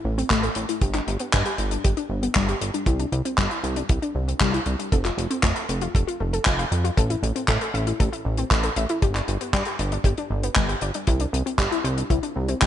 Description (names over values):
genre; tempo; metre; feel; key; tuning
italo disco; 117 BPM; 4/4; straight; unclear; A4 = 441 Hz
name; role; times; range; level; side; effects
analog pluck; arpeggios; 0.0-12.7 s; G3 to F5; -28 LUFS; left 3 dB; chorus, digital delay
chorused synth bass; bass; 0.0-12.7 s; F1 to A2; -26 LUFS; equal; digital delay
damped 70s drum kit; drums; 0.2-12.7 s; handclaps, hi-hat; -26 LUFS; equal; gated reverb
kick drum; drums; 0.3-12.7 s; none; -22 LUFS; equal; none
room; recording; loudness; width
light reverb; nothing above 10.7 kHz; -21 LUFS; side -11 dB against mid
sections
0.0-12.7 A section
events
none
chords
0.0 A5; 0.8 G5; 2.9 Csus2; 4.9 F; 7.0 A5; 9.0 G5; 11.1 Csus2